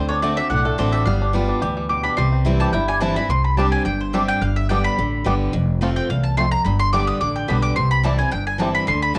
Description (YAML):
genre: bluegrass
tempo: 215 BPM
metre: 4/4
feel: straight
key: C major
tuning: A4 = 440 Hz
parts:
  - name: picked steel-string acoustic guitar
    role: accompaniment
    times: 0.0-9.2 s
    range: E2 to G4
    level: -26 LUFS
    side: equal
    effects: cassette tape
  - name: bluegrass banjo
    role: arpeggios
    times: 0.0-8.7 s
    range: E3 to G4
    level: -28 LUFS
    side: equal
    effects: cassette tape, plate reverb
  - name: mandolin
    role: stabs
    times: 0.0-9.2 s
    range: A4 to Eb6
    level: -25 LUFS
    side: equal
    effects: cassette tape, plate reverb
  - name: upright bass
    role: bass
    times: 0.0-9.2 s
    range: F1 to D2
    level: -24 LUFS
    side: equal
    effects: none
room: moderate studio reverb, RT60 0.6 s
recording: home recording on cassette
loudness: -20 LUFS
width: mono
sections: 0.0-3.3 A section; 3.3-9.2 A section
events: mandolin solo 0.0-9.2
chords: 0.0 D7; 1.1 G7; 2.2 C; 3.3 Csus2; 4.4 G; 5.5 F; 6.7 G; 7.8 C